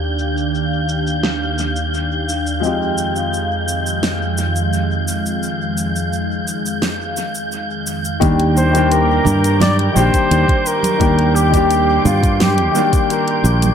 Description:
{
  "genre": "sunset chillout",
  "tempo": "86 BPM",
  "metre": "4/4",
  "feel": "straight",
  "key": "Eb major",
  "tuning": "A4 = 440 Hz",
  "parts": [
    { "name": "warm baby grand piano", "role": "accompaniment", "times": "0.0-13.7 s", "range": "Eb3 to G4", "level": "-20 LUFS", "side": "left 2 dB", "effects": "auto-pan, tape echo" },
    { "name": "lush unison pad", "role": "sustained chords", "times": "0.0-13.7 s", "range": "Eb2 to D6", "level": "-21 LUFS", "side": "right 1 dB", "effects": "chorus, phaser, vintage 12-bit sampler grit" },
    { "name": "wind-like tuned noise texture", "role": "texture", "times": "0.0-13.7 s", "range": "G6", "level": "-26 LUFS", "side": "equal", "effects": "built-in reverb" },
    { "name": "smooth R&B drum kit", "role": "drums", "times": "0.2-13.7 s", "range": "hi-hat, shaker, snare drum", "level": "-24 LUFS", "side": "equal", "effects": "low-pass filter on perc, low-pass filter on hats, low-pass filter on snare, dub echo" },
    { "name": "fretless electric bass", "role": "bass", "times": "8.2-13.7 s", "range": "Bb1 to G2", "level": "-15 LUFS", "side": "right 1 dB", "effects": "none" },
    { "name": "electronic kick drum", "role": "drums", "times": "8.2-13.1 s", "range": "none", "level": "-17 LUFS", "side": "equal", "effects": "none" },
    { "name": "congas", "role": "percussion", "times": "8.2-13.7 s", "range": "none", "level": "-23 LUFS", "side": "right 4 dB", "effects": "none" },
    { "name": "warm flugelhorn", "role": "melody", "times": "8.6-13.6 s", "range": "F4 to D5", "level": "-19 LUFS", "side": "equal", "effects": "dub echo" }
  ],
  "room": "wet spring reverb, RT60 1.7 s",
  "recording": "echo-heavy mix",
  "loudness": "-14 LUFS",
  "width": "side -8 dB against mid",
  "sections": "0.0-8.2 A section; 8.2-13.7 B section",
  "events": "none",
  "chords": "0.0 Ebmaj7; 2.6 Fm9; 8.2 Ebmaj7"
}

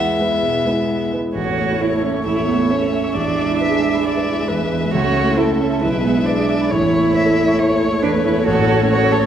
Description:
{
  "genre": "quick classical-period movement for piano quintet",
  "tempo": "135 BPM",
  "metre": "4/4",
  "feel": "rubato",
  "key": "A major",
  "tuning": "A4 = 441 Hz",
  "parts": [
    { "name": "warm violin", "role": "melody", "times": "0.0-9.3 s", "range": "C#5 to E5", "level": "-24 LUFS", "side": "left 4 dB", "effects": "none" },
    { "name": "dark cello", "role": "second line", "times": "0.0-9.3 s", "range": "B3 to A4", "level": "-20 LUFS", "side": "right 4 dB", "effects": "none" },
    { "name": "dark violin", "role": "second line", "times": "0.0-9.3 s", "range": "B3 to E5", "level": "-24 LUFS", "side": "left 2 dB", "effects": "none" },
    { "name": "dark viola", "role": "accompaniment", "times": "0.0-9.3 s", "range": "G#3 to A3", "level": "-24 LUFS", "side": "right 2 dB", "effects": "none" },
    { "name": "warm concert grand piano", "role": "accompaniment", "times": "0.0-9.3 s", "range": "A1 to C#6", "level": "-20 LUFS", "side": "equal", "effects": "none" }
  ],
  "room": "wet recital hall reverb, RT60 1.3 s",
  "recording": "none",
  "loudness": "-15 LUFS",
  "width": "side -9 dB against mid",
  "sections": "0.0-1.4 A section; 1.4-9.3 B section",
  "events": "none",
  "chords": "0.0 E; 1.4 A; 3.2 E7/A; 4.9 A/C#; 5.8 E7/B; 6.7 A; 8.5 F#m/A"
}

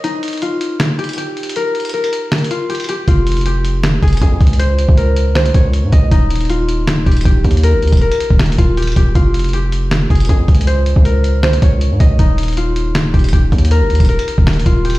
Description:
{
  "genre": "hip hop, trap",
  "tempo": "158 BPM",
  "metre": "4/4",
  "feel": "half-time",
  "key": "unclear",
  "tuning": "A4 = 439 Hz",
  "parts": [
    { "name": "concert harp", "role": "melody", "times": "0.0-15.0 s", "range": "Eb4 to Eb5", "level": "-19 LUFS", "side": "left 1 dB", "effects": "none" },
    { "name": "lo-fi sampler-style drum kit", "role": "drums", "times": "0.0-15.0 s", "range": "finger snaps, hi-hat, kick drum, snare drum", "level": "-14 LUFS", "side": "equal", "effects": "none" },
    { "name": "distorted 808-style bass", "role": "bass", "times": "3.1-15.0 s", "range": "Db1 to Ab2", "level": "-14 LUFS", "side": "equal", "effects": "distortion" }
  ],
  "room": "digital ambience",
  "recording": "played on a big sound system in a bare room, stone room reverb",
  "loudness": "-11 LUFS",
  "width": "side -18 dB against mid",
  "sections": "0.0-15.0 A section",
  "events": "break 0.0-3.1",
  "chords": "0.0 N.C.; 3.1 Fm; 4.6 Db5; 6.1 Eb7; 9.2 Fm; 10.7 Db5; 12.2 Eb7"
}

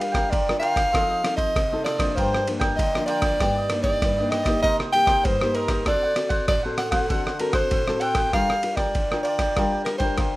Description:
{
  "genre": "samba and choro",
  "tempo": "97 BPM",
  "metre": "4/4",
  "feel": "straight",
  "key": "G minor",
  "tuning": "A4 = 445 Hz",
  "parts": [
    { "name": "warm soprano saxophone", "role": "melody", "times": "0.0-10.4 s", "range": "Bb4 to G5", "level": "-23 LUFS", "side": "equal", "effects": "none" },
    { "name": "cavaquinho", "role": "accompaniment", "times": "0.0-10.4 s", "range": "D4 to G5", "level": "-29 LUFS", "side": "right 1 dB", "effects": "none" },
    { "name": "nylon-string guitar", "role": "accompaniment", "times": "0.0-10.4 s", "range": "G2 to Bb4", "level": "-28 LUFS", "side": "left 2 dB", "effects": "none" },
    { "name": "dusty soul sampler-style drum kit", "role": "drums", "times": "0.0-10.3 s", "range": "kick drum, ride cymbal, rim click", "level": "-26 LUFS", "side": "equal", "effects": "overdrive" }
  ],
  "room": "wet small room reverb, RT60 0.5 s",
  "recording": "rough home demo mix",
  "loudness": "-20 LUFS",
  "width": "side -18 dB against mid",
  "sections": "0.0-8.3 A section; 8.3-10.4 B section",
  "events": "none",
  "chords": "0.0 Gm7; 0.9 F7; 2.2 Gm7; 3.4 Ebmaj7/G; 4.6 Cm7; 5.9 D7; 8.3 Gm7"
}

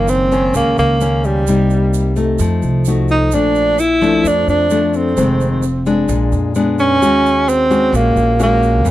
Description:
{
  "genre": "bossa nova",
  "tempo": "130 BPM",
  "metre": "4/4",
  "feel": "straight",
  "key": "Bb minor",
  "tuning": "A4 = 440 Hz",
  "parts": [
    { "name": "mellow tenor saxophone", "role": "melody", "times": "0.0-8.8 s", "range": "G3 to E4", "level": "-14 LUFS", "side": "right 1 dB", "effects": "none" },
    { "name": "nylon-string guitar", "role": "accompaniment", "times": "0.0-8.9 s", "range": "F2 to Gb4", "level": "-17 LUFS", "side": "left 3 dB", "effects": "none" },
    { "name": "upright bass", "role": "bass", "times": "0.0-8.9 s", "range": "F1 to Gb2", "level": "-18 LUFS", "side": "right 1 dB", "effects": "none" },
    { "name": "tube shaker", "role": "percussion", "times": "0.1-8.9 s", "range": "none", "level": "-33 LUFS", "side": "right 16 dB", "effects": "none" }
  ],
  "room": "little or no reverb",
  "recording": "dry, close 1970s-style studio recording",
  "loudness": "-12 LUFS",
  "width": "side -14 dB against mid",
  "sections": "0.0-8.9 A section",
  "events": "none",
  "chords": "0.0 Gb6; 1.5 Cm7; 2.4 F7b9; 3.3 Bbmaj7; 5.2 Fm7; 6.1 Bb7b9; 7.0 Ebm7"
}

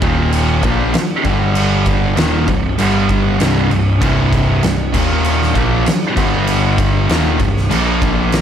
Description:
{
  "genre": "stoner and doom metal",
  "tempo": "98 BPM",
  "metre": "4/4",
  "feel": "straight",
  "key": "C minor",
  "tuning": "A4 = 440 Hz",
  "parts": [
    { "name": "distorted electric guitar", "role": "riff", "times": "0.0-8.4 s", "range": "C2 to Bb3", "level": "-20 LUFS", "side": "equal", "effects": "overdrive" },
    { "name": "thick fuzz guitar", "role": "riff", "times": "0.0-8.4 s", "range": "C2 to Bb3", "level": "-20 LUFS", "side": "left 7 dB", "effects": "distortion" },
    { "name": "thick fuzz guitar", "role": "riff", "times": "0.0-8.4 s", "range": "C2 to Bb3", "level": "-19 LUFS", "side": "right 7 dB", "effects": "distortion" },
    { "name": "overdriven picked electric bass", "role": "bass", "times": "0.0-8.4 s", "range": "C1 to Bb1", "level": "-19 LUFS", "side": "equal", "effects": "none" },
    { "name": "oversized low-tuned drum kit", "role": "drums", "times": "0.0-8.4 s", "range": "crash cymbal, kick drum, snare drum", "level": "-18 LUFS", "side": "equal", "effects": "none" }
  ],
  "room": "light reverb, small room ambience",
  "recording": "none",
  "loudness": "-12 LUFS",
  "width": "side -9 dB against mid",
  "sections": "0.0-8.4 A section",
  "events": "none",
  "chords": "0.0 Eb5; 0.6 C7sus4; 1.2 G5; 2.2 Cm; 2.8 G5; 3.4 C5; 4.9 Eb5; 5.6 C7sus4; 6.2 G5; 7.1 Cm; 7.7 Bb5"
}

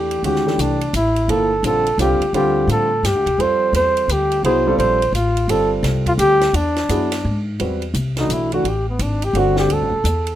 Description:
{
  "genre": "modal jazz",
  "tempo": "171 BPM",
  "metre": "3/4",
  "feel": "swing 64% on 8ths",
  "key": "D minor",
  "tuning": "A4 = 440 Hz",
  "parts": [
    { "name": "trumpet with bucket mute", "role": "melody", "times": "0.0-10.4 s", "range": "B3 to C5", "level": "-18 LUFS", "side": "equal", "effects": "none" },
    { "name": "warm grand piano", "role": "accompaniment", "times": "0.0-9.9 s", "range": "D3 to B4", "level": "-21 LUFS", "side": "right 1 dB", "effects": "none" },
    { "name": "upright bass", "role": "bass", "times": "0.0-10.4 s", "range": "G1 to A2", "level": "-21 LUFS", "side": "left 1 dB", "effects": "none" },
    { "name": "compact cocktail drum kit", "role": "drums", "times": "0.1-10.3 s", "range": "hi-hat, kick drum, ride cymbal, snare drum", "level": "-29 LUFS", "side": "right 2 dB", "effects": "none" }
  ],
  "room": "little or no reverb",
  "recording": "minimal, uncompressed stereo recording",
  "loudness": "-15 LUFS",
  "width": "side -12 dB against mid",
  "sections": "0.0-7.6 A section; 7.6-10.4 B section",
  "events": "muted trumpet solo 7.6-10.4",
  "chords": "0.0 D9sus4; 3.4 Csus4; 6.5 E7; 7.6 A9sus4"
}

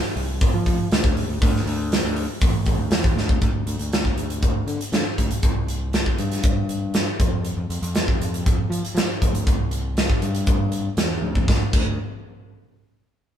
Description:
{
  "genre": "classic rock",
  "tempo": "119 BPM",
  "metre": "4/4",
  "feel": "straight",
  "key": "unclear",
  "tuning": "A4 = 440 Hz",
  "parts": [
    { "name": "growling fingered electric bass", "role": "bass", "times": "0.2-12.0 s", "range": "A1 to F3", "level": "-26 LUFS", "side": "left 1 dB", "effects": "overdrive" },
    { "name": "big rock drum kit", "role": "drums", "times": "0.2-11.8 s", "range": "crash cymbal, hi-hat, kick drum, snare drum, toms", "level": "-20 LUFS", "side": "equal", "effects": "none" }
  ],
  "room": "light reverb",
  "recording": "band playing live in one room",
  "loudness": "-19 LUFS",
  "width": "side -10 dB against mid",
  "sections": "0.0-3.4 A section; 3.4-11.5 B section; 11.5-13.4 C section",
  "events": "drum fill 3.2, 11.2",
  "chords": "none"
}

